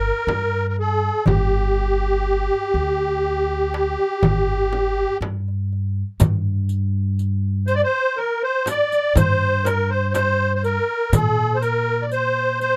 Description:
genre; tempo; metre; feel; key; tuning
Arabic maqam ensemble; 122 BPM (eighths); 10/8; straight; G maqam bayati; A4 = 440 Hz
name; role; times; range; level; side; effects
musette accordion; melody; 0.0-12.8 s; G4 to D5; -22 LUFS; equal; none
upright bass; bass; 0.0-12.7 s; G1 to Bb2; -25 LUFS; equal; none
darbuka; percussion; 0.3-12.7 s; none; -27 LUFS; equal; none
frame drum; percussion; 0.3-11.4 s; none; -27 LUFS; equal; none
riq; percussion; 6.2-12.7 s; none; -34 LUFS; equal; none
room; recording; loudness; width
little or no reverb; close, detailed microphones; -21 LUFS; mono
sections
0.0-6.2 A section; 6.2-12.8 B section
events
none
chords
none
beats
0.28 0.77 | 1.27 1.76 2.25 2.75 3.24 3.73 4.23 4.72 5.21 5.71 | 6.20 6.69 7.18 7.68 8.17 8.66 9.16 9.65 10.14 10.64 | 11.13 11.62 12.12 12.61

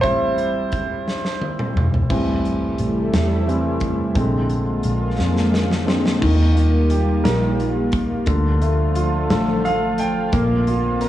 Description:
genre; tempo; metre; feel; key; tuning
six-eight pop ballad; 58 BPM (dotted quarters); 6/8; straight; unclear; A4 = 445 Hz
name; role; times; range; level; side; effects
warm concert grand piano; accompaniment; 0.0-11.1 s; D3 to G5; -22 LUFS; equal; none
vintage muted fingered electric bass; bass; 0.0-11.1 s; E1 to F2; -21 LUFS; equal; none
huge arena drum kit; drums; 0.0-11.1 s; crash cymbal, hi-hat, kick drum, snare drum, toms; -25 LUFS; equal; none
lush unison pad; sustained chords; 2.7-11.1 s; C3 to F4; -23 LUFS; equal; chorus
room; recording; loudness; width
light reverb; worn, warbling old tape, cassette tape, warbly pitch drift, small room ambience; -17 LUFS; side -13 dB against mid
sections
0.0-2.1 A section; 2.1-6.2 B section; 6.2-11.1 C section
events
grand piano solo 0.0-2.1, 2.1-6.2; drum fill 1.1-2.1, 5.2-6.2; grand piano fill 9.3-10.3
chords
0.0 Am7; 4.2 Bb7; 6.2 Ebadd9; 8.3 Dm; 10.3 Bbadd9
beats
| 0.04 1.06 | 2.10 3.12 | 4.16 5.18 | 6.21 7.24 | 8.27 9.30 | 10.33

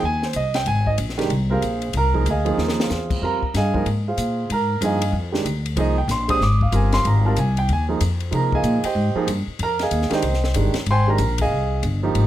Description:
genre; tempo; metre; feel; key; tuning
modal jazz; 188 BPM; 4/4; swing 63% on 8ths; F dorian; A4 = 439 Hz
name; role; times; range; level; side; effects
warm grand piano; accompaniment; 0.0-12.3 s; Eb3 to Eb6; -22 LUFS; right 3 dB; none
upright bass; bass; 0.0-12.3 s; G1 to C3; -21 LUFS; left 1 dB; none
compact cocktail drum kit; drums; 0.2-12.2 s; crash cymbal, hi-hat, kick drum, ride cymbal, snare drum; -29 LUFS; left 3 dB; none
room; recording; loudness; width
light reverb; none; -18 LUFS; side -13 dB against mid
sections
0.0-12.3 A section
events
drum fill 2.6-2.9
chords
0.0 Fm9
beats
0.03 0.35 | 0.67 0.99 1.30 1.62 | 1.94 2.26 2.58 2.90 | 3.22 3.54 3.86 4.18 | 4.50 4.82 5.14 5.46 | 5.78 6.09 6.41 6.73 | 7.05 7.37 7.69 8.01 | 8.33 8.65 8.97 9.29 | 9.61 9.92 10.24 10.56 | 10.88 11.20 11.52 11.84 | 12.16

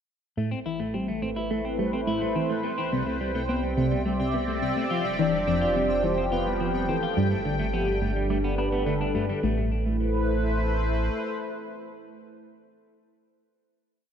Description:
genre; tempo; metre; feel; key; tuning
ambient, sequencer-driven space music; 106 BPM; 4/4; straight; A minor; A4 = 440 Hz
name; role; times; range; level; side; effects
sweeping resonant pad; sustained chords; 0.9-12.5 s; F3 to G5; -29 LUFS; equal; chorus
semi-hollow electric guitar; arpeggios; 0.4-9.7 s; G3 to F4; -33 LUFS; moving between left 5 dB and right 1 dB; auto-pan, tape echo
tight sequenced synth; riff; 0.4-9.7 s; F2 to C4; -29 LUFS; equal; chorus, phaser, tape echo
round analog bass; bass; 0.4-11.1 s; F1 to C2; -31 LUFS; equal; tube saturation
pulsing gated texture; texture; 0.4-9.4 s; G5; -44 LUFS; equal; chorus, built-in reverb
soft octave-layered synth lead; melody; 5.2-12.5 s; A4 to D5; -31 LUFS; equal; chorus, tremolo, tape echo
room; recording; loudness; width
wet plate reverb, RT60 2.8 s; dreamy mix soaked in reverb; -24 LUFS; side -8 dB against mid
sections
0.4-9.4 A section; 9.4-11.7 final chord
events
fade-in on analog synth bass 0.4-9.4; fade-in on synth texture 0.4-9.4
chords
0.4 Am; 2.6 C6; 4.9 Fsus2; 7.2 Gadd9; 9.4 Am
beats
| 0.38 0.94 1.51 2.08 | 2.64 3.21 3.77 4.34 | 4.91 5.47 6.04 6.60 | 7.17 7.74 8.30 8.87 | 9.43 10.00 10.56 11.13

